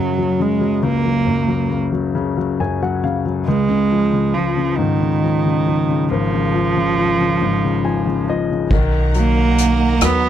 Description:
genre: six-eight pop ballad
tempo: 46 BPM (dotted quarters)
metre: 6/8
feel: straight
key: unclear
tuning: A4 = 438 Hz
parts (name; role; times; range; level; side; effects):
- warm cello; melody; 0.0-10.3 s; Eb3 to B3; -18 LUFS; right 5 dB; none
- clear grand piano; accompaniment; 0.0-10.3 s; Ab1 to Ab5; -19 LUFS; left 5 dB; none
- warm studio string section; sustained chords; 8.7-10.3 s; D#4 to A#5; -26 LUFS; right 4 dB; none
- upright bass; bass; 8.7-10.3 s; B1 to D#2; -17 LUFS; equal; none
- soft-mallet drum kit; drums; 8.7-10.2 s; crash cymbal, hi-hat, kick drum, rim click; -21 LUFS; equal; none
room: light reverb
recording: none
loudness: -15 LUFS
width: side -10 dB against mid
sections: 0.0-8.7 A section; 8.7-10.3 B section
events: grand piano fill 2.1-3.5, 7.4-8.7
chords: 0.0 Gb; 3.5 Db; 8.7 Bmaj7

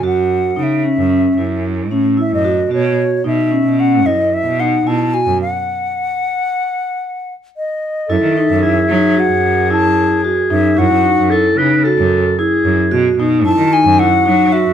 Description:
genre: contemporary instrumental, chamber music in an uneven meter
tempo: 112 BPM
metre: 5/4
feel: straight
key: F# dorian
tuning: A4 = 438 Hz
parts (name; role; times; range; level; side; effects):
- bright wooden flute; melody; 0.0-14.7 s; C#5 to A5; -17 LUFS; left 2 dB; none
- vibraphone with medium mallets; arpeggios; 0.0-14.7 s; C#4 to F#4; -15 LUFS; equal; none
- clear cello; bass; 0.0-14.7 s; F#2 to F#3; -18 LUFS; right 4 dB; none
- warm clarinet; second line; 8.1-14.7 s; F#4 to B4; -18 LUFS; left 2 dB; none
room: light reverb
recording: none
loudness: -12 LUFS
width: side -9 dB against mid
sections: 0.0-8.1 A section; 8.1-14.7 B section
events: stop 5.4-8.1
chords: 0.0 F#7(no3); 2.7 Bsus4; 5.4 N.C.; 8.1 F#m13; 10.8 F#m7; 13.5 F#m13

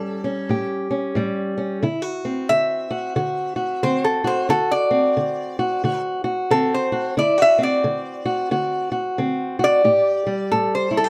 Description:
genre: acoustic country blues, solo or duo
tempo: 90 BPM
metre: 4/4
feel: swing 61% on 8ths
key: unclear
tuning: A4 = 440 Hz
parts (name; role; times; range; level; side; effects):
- lap resonator guitar; melody; 0.0-11.1 s; A4 to E5; -21 LUFS; equal; plate reverb
- fingerpicked old ladder-braced acoustic guitar; accompaniment; 0.0-11.1 s; A2 to G4; -25 LUFS; equal; none
room: light reverb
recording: dark, warm production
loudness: -21 LUFS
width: mono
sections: 0.0-11.1 A section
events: none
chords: 0.0 A7; 1.8 D7; 9.8 A5

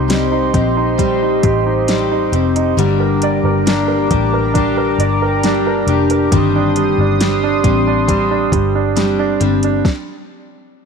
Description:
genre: pop ballad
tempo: 68 BPM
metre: 4/4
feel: straight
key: unclear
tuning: A4 = 439 Hz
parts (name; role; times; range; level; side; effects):
- clear concert grand piano; accompaniment; 0.0-9.9 s; C3 to D5; -18 LUFS; right 10 dB; none
- chorused pulse-width pad; sustained chords; 0.0-9.8 s; D4 to Eb6; -19 LUFS; left 1 dB; none
- picked steel-string acoustic guitar; arpeggios; 0.0-9.9 s; G2 to G4; -20 LUFS; left 13 dB; slapback echo
- vintage muted picked electric bass; bass; 0.0-9.8 s; F1 to C2; -19 LUFS; left 1 dB; none
- smooth R&B drum kit; drums; 0.1-10.1 s; hi-hat, kick drum, snare drum; -19 LUFS; left 1 dB; overdrive
room: moderate echo chamber reverb, RT60 2.4 s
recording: 1960s-style stereo with parts hard left and right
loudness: -12 LUFS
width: side -6 dB against mid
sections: 0.0-10.9 A section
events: stop 9.9-10.9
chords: 0.0 Cm; 2.8 Gm; 6.3 Cmadd9/G; 9.9 N.C.

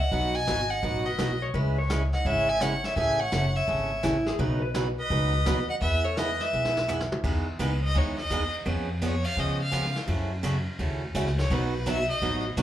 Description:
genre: country, western swing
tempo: 169 BPM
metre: 4/4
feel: swing 65% on 8ths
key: E major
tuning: A4 = 438 Hz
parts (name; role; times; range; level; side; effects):
- clear fiddle; melody; 0.0-12.4 s; B4 to G#5; -29 LUFS; left 1 dB; slapback echo
- warm clarinet; second line; 0.0-6.9 s; A4 to E5; -33 LUFS; right 2 dB; slapback echo
- picked steel-string acoustic guitar; accompaniment; 0.1-12.6 s; B2 to B4; -31 LUFS; right 2 dB; slapback echo
- upright bass; bass; 0.1-12.6 s; F#1 to C#3; -29 LUFS; equal; none
- vintage brush drum kit; drums; 0.1-12.6 s; brushed snare drum, crash cymbal, hi-hat, kick drum, ride cymbal, snare drum, toms; -35 LUFS; equal; none
- clean lap steel guitar; second line; 1.4-4.7 s; E4 to C#5; -30 LUFS; left 1 dB; slapback echo
room: light reverb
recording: live gig heard through the venue's PA, club ambience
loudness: -24 LUFS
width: side -12 dB against mid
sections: 0.0-7.2 A section; 7.2-12.6 B section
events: drum fill 6.5-7.2; fiddle solo 7.2-12.6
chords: 0.1 B; 1.5 C#m; 3.0 Amaj7; 4.4 Badd9; 5.8 E; 7.2 Emaj7; 8.7 C#7/E#; 10.1 F#m7; 11.5 B

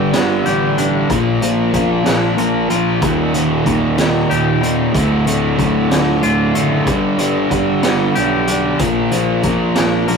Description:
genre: quiet-loud alternative rock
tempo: 62 BPM (dotted quarters)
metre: 6/8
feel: straight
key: unclear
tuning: A4 = 435 Hz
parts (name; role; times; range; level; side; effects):
- twangy electric guitar; arpeggios; 0.0-10.2 s; D2 to Bb4; -20 LUFS; left 3 dB; none
- fuzz guitar; riff; 0.0-10.2 s; D2 to Bb3; -16 LUFS; right 1 dB; distortion
- fuzz picked electric bass; bass; 0.0-10.2 s; D1 to B1; -24 LUFS; left 1 dB; overdrive
- raw garage drum kit; drums; 0.1-10.2 s; hi-hat, kick drum, snare drum; -20 LUFS; right 2 dB; none
room: moderate studio reverb, RT60 0.5 s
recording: rough rehearsal-room recording, warm saturation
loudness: -13 LUFS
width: side -5 dB against mid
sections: 0.0-10.2 A section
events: none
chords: 0.0 G; 1.1 Bb; 3.0 Eb; 5.0 Dm; 6.9 G; 8.8 Bb

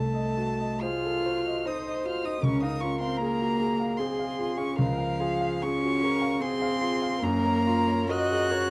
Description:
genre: classical, slow romantic movement for piano quartet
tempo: 65-78 BPM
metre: 3/4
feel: rubato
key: Db major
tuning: A4 = 440 Hz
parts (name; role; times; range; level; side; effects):
- warm violin; melody; 0.0-8.7 s; F5 to Gb6; -34 LUFS; equal; none
- warm cello; second line; 0.0-8.7 s; F3 to Gb4; -32 LUFS; equal; none
- warm concert grand piano; accompaniment; 0.0-8.7 s; C2 to F5; -32 LUFS; equal; none
- warm viola; accompaniment; 0.0-8.7 s; F4 to Eb5; -36 LUFS; equal; none
room: moderate studio reverb, RT60 0.5 s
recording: dark, warm production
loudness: -27 LUFS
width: mono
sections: 0.0-8.7 A section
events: none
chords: 0.0 Cdim7; 2.4 Db; 7.2 Gbmaj7

